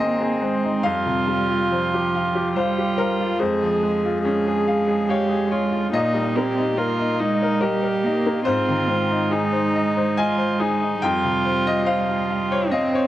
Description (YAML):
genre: neoclassical piano and strings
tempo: 71 BPM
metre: 3/4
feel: rubato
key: Ab major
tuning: A4 = 440 Hz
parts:
  - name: dark cello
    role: second line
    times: 0.0-13.1 s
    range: F3 to C4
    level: -24 LUFS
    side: right 4 dB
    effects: none
  - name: bright upright piano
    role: accompaniment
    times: 0.0-13.1 s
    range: F2 to Ab5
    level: -22 LUFS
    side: left 3 dB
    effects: none
  - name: dark viola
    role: accompaniment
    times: 0.0-13.1 s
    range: C4 to Ab4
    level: -24 LUFS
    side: right 2 dB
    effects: none
room: light reverb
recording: cassette tape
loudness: -19 LUFS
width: side -13 dB against mid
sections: 0.0-13.1 A section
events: none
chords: 0.0 Ab; 0.8 Fsus2; 3.4 Db/F; 5.9 Eb; 8.5 Ab; 11.0 Fsus2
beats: | 0.84 1.70 2.55 | 3.40 4.24 5.09 | 5.93 6.78 7.62 | 8.46 9.31 10.17 | 11.02 11.87 12.72